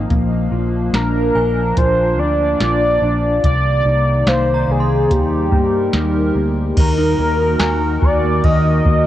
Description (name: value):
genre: dream pop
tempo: 72 BPM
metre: 4/4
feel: straight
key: unclear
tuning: A4 = 439 Hz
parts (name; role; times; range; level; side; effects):
- hollow soft pad; sustained chords; 0.0-9.1 s; C3 to Bb4; -22 LUFS; right 1 dB; chorus
- mellow electric guitar; arpeggios; 0.0-9.1 s; C3 to C5; -22 LUFS; left 3 dB; ensemble chorus, ping-pong delay
- vintage muted fingered electric bass; bass; 0.0-9.1 s; Bb1 to G2; -20 LUFS; equal; none
- synth chime; texture; 0.0-9.1 s; F5 to C6; -31 LUFS; right 2 dB; ensemble chorus, ping-pong delay
- soft vintage rhythm box; drums; 0.1-9.0 s; crash cymbal, hi-hat, kick drum, ride cymbal, snare drum, tambourine; -17 LUFS; equal; none
- warm velvety synth lead; melody; 0.9-9.1 s; G4 to Eb5; -18 LUFS; equal; chorus, ping-pong delay
room: light reverb, digital ambience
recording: worn, warbling old tape, cassette tape, warbly pitch drift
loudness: -13 LUFS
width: side -13 dB against mid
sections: 0.0-6.8 A section; 6.8-9.1 B section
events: none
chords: 0.1 Bb; 3.4 Cm7; 5.1 Eb; 6.8 Ebm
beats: | 0.10 0.94 1.77 2.60 | 3.44 4.27 5.11 5.94 | 6.77 7.61 8.44